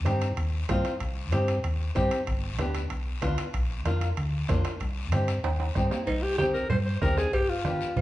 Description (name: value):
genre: latin, cumbia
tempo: 190 BPM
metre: 4/4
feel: straight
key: C minor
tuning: A4 = 440 Hz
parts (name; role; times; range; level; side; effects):
- flamenco guitar; accompaniment; 0.0-7.9 s; Bb3 to G4; -31 LUFS; left 1 dB; none
- hollow-body short-scale fingered electric bass; bass; 0.0-8.0 s; G1 to G2; -29 LUFS; equal; none
- bombo; percussion; 0.1-7.8 s; none; -33 LUFS; equal; none
- congas; percussion; 0.1-8.0 s; none; -34 LUFS; right 1 dB; none
- guiro; percussion; 0.1-8.0 s; none; -42 LUFS; left 5 dB; none
- timbales and cowbell; percussion; 0.1-8.0 s; none; -36 LUFS; right 3 dB; none
- raspy alto saxophone; melody; 6.1-8.0 s; Eb4 to C5; -28 LUFS; equal; none
room: moderate large studio reverb, RT60 1.1 s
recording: band playing live in one room, nothing above 10.6 kHz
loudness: -25 LUFS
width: side -15 dB against mid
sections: 0.0-6.1 A section; 6.1-8.0 B section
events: drum fill 5.4-6.1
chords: 0.0 Cm; 2.3 G7; 3.5 Bb; 4.8 Cm; 7.3 G7